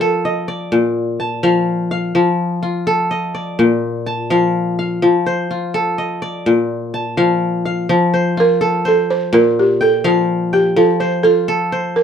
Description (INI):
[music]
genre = west african traditional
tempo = 84 BPM (dotted quarters)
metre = 12/8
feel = straight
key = F mixolydian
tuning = A4 = 440 Hz
[part]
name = balafon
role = melody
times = 0.0-0.9, 8.4-12.0 s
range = F4 to C5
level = -14 LUFS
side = right 3 dB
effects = none
[part]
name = kora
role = arpeggios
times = 0.0-12.0 s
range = Bb2 to A5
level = -15 LUFS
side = left 2 dB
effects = none
[sound]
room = light reverb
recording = dark, warm production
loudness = -14 LUFS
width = side -8 dB against mid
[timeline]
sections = 0.0-7.9 A section; 7.9-12.0 B section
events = balafon solo 7.9-12.0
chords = 0.0 F; 0.7 Bb; 2.1 F; 3.6 Bb; 5.0 F; 6.5 Bb; 7.9 F; 9.3 Bb5; 10.8 F